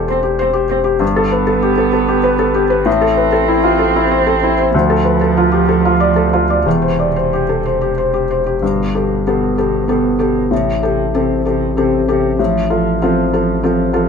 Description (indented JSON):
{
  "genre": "neoclassical piano and strings",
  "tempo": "96 BPM",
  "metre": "3/4",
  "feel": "rubato",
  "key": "unclear",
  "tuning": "A4 = 442 Hz",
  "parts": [
    { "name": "felt-muted upright piano", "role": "accompaniment", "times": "0.0-14.1 s", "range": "D2 to D5", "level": "-14 LUFS", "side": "left 3 dB", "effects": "none" },
    { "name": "saturated sub bass", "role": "bass", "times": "0.0-14.1 s", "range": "E1 to D2", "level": "-22 LUFS", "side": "right 1 dB", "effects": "none" },
    { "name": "muted cello", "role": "second line", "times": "0.1-14.1 s", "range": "B2 to C4", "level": "-19 LUFS", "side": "right 10 dB", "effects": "none" }
  ],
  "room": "light reverb",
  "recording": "none",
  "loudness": "-12 LUFS",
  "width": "side -6 dB against mid",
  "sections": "0.0-8.6 A section; 8.6-14.1 B section",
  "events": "none",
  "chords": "0.0 C/E; 1.0 Gadd9; 2.9 Am; 4.7 Dm; 6.7 C/E; 8.6 Gadd9; 10.5 Am7; 12.4 F/A"
}